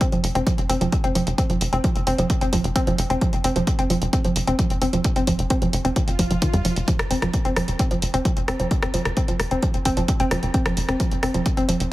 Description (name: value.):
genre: driving peak-time techno.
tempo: 131 BPM.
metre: 4/4.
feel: straight.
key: unclear.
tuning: A4 = 440 Hz.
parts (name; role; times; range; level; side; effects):
woody wave-folded pluck; riff; 0.0-11.7 s; Eb3 to C4; -24 LUFS; equal; chorus, overdrive, sidechain pumping, tape echo.
electronic kick drum; drums; 0.0-11.6 s; none; -23 LUFS; equal; none.
punchy analog drum machine; drums; 0.0-11.9 s; hi-hat, rim click; -28 LUFS; equal; sidechain pumping on hats.
tight sequencer bass; bass; 0.1-11.9 s; F1 to F2; -25 LUFS; equal; sidechain pumping.
swell; sound effects; 6.1-6.9 s; none; -34 LUFS; left 1 dB; none.
room: light reverb, digital ambience.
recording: heavily compressed radio sound, multiband compression.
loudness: -19 LUFS.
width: side -16 dB against mid.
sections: 0.0-11.9 A section.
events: swell 6.1-6.9.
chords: 0.0 F5.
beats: 0.01 0.47 0.92 | 1.38 1.84 2.30 2.76 | 3.21 3.67 4.13 4.59 | 5.05 5.50 5.96 6.42 | 6.88 7.34 7.79 8.25 | 8.71 9.17 9.63 10.08 | 10.54 11.00 11.46.